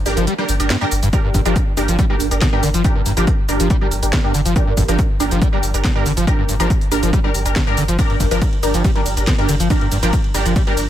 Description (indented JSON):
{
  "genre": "driving peak-time techno",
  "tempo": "140 BPM",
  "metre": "4/4",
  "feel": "straight",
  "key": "G minor",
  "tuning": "A4 = 436 Hz",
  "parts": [
    { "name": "rave stab", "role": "stabs", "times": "0.1-10.8 s", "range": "D4 to Bb4", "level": "-21 LUFS", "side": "right 1 dB", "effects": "chorus, built-in reverb, phaser, sidechain pumping, tape echo" },
    { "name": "warm sub bass", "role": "bass", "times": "0.1-10.9 s", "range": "G1", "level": "-20 LUFS", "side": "equal", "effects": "sidechain pumping, low-pass filter" },
    { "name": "techno drum kit", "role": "drums", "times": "0.1-10.9 s", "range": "hi-hat, ride cymbal, shaker, snare drum", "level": "-24 LUFS", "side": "equal", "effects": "sidechain pumping on hats, sidechain pumping on perc, sidechain pumping on cymbals" },
    { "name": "overdriven acid bass", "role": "riff", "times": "0.2-10.7 s", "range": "G2 to G3", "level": "-22 LUFS", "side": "equal", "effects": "ensemble chorus, sidechain pumping, tape echo" },
    { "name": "electronic kick drum", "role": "drums", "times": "1.1-10.6 s", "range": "none", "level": "-18 LUFS", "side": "equal", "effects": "none" }
  ],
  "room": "digital ambience",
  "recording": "none",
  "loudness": "-14 LUFS",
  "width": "side -12 dB against mid",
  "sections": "0.0-10.9 A section",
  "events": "kick drops out 0.3-1.1",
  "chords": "0.0 Gm"
}